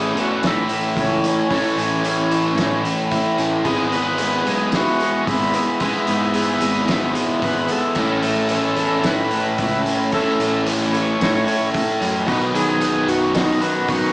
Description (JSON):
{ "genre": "classic rock", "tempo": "111 BPM", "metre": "4/4", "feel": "straight", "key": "unclear", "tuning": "A4 = 441 Hz", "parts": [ { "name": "overdriven tonewheel organ", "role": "melody", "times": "0.0-14.1 s", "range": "B3 to C#5", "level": "-23 LUFS", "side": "equal", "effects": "slow rotary speaker" }, { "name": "picked twelve-string acoustic guitar", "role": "accompaniment", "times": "0.0-14.1 s", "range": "A2 to A4", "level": "-27 LUFS", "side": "right 1 dB", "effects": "none" }, { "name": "biting overdriven guitar", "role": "riff", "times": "0.0-14.1 s", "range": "A2 to E4", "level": "-24 LUFS", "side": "right 1 dB", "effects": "none" }, { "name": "distorted electric guitar", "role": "riff", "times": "0.0-14.1 s", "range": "A2 to B4", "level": "-21 LUFS", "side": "left 1 dB", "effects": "overdrive" }, { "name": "fuzz fingered electric bass", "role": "bass", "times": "0.0-14.1 s", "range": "G#1 to A2", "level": "-27 LUFS", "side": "equal", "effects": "overdrive" }, { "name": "cloth-damped thuddy drum kit", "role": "drums", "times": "0.2-14.0 s", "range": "hi-hat, kick drum, snare drum", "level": "-26 LUFS", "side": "equal", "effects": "none" }, { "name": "overdriven tonewheel organ", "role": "sustained chords", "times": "8.0-14.1 s", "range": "F#3 to A4", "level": "-32 LUFS", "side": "equal", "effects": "none" } ], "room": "moderate large studio reverb, RT60 1.2 s", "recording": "band playing live in one room, small speaker sound", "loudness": "-16 LUFS", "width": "side -23 dB against mid", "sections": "0.0-14.1 A section", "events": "half time 0.0-14.1", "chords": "0.0 A; 3.7 E/G#; 8.0 A; 12.3 B" }